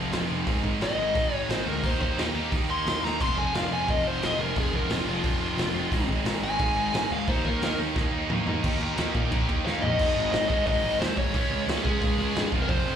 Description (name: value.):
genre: punk rock.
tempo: 177 BPM.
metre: 4/4.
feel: straight.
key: unclear.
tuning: A4 = 440 Hz.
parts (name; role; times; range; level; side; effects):
distorted electric guitar; riff; 0.0-13.0 s; F2 to Eb4; -33 LUFS; left 13 dB; distortion, slapback echo.
sludgy distorted guitar; riff; 0.0-13.0 s; F2 to Eb4; -36 LUFS; right 2 dB; overdrive.
tight distorted guitar; riff; 0.0-13.0 s; Ab2 to G4; -31 LUFS; right 15 dB; distortion, slapback echo.
fuzz picked electric bass; bass; 0.0-13.0 s; F1 to Bb2; -32 LUFS; equal; overdrive.
raw garage drum kit; drums; 0.1-12.8 s; crash cymbal, hi-hat, kick drum, snare drum, splash cymbal, toms; -29 LUFS; equal; none.
biting lead guitar; melody; 0.8-13.0 s; F4 to C6; -28 LUFS; left 1 dB; overdrive, slapback echo.
room: little or no reverb.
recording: live gig heard through the venue's PA, club reverb.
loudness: -23 LUFS.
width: side -8 dB against mid.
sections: 0.0-8.6 A section; 8.6-10.0 B section; 10.0-13.0 C section.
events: lead electric guitar solo 0.0-8.6; drum fill 3.0, 8.0-8.6, 9.7-10.0.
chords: 0.5 Ab; 1.8 Eb; 3.2 Fm; 5.9 Ab; 7.3 Eb; 10.0 Ab; 11.3 Db.